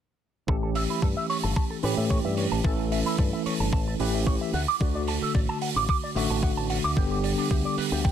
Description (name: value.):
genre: nu-disco, nu disco.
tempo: 111 BPM.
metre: 4/4.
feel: straight.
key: A mixolydian.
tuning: A4 = 441 Hz.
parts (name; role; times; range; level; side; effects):
bell-like tine electric piano; accompaniment; 0.5-8.1 s; D3 to A4; -28 LUFS; equal; medium stereo tremolo, low-pass filter, ping-pong delay.
electric guitar with an envelope filter; riff; 0.5-8.1 s; D4 to D6; -31 LUFS; right 4 dB; analog chorus, low-pass filter, ping-pong delay.
fingered electric bass with an envelope filter; bass; 0.5-8.1 s; G1 to A2; -29 LUFS; left 1 dB; tube saturation.
electronic kick drum; drums; 0.5-8.1 s; none; -25 LUFS; left 1 dB; overdrive.
hi-hat; drums; 0.8-7.9 s; none; -34 LUFS; right 6 dB; none.
room: little or no reverb.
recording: none.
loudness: -23 LUFS.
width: side -10 dB against mid.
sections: 0.5-8.1 A section.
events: filter sweep on tine electric piano 0.5-8.1.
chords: 0.5 A7; 4.5 D; 7.0 G.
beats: | 0.48 1.02 1.56 2.10 | 2.65 3.19 3.73 4.27 | 4.81 5.35 5.89 6.43 | 6.97 7.51 8.05.